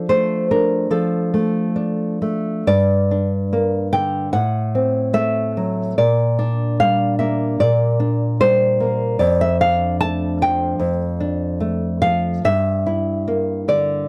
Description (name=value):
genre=romantic piece for solo classical guitar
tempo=74 BPM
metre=4/4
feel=uneven beats, rubato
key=D minor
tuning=A4 = 439 Hz
part: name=nylon-string guitar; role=solo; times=0.0-14.1 s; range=F2 to A5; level=-19 LUFS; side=equal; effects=none
room=light reverb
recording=dark, warm production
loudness=-19 LUFS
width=mono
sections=0.0-14.1 A section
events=none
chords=0.0 Dm/F; 2.7 Gm; 4.3 F#dim/A; 6.0 Gm/Bb; 9.2 Dm/F; 12.4 Em7b5/G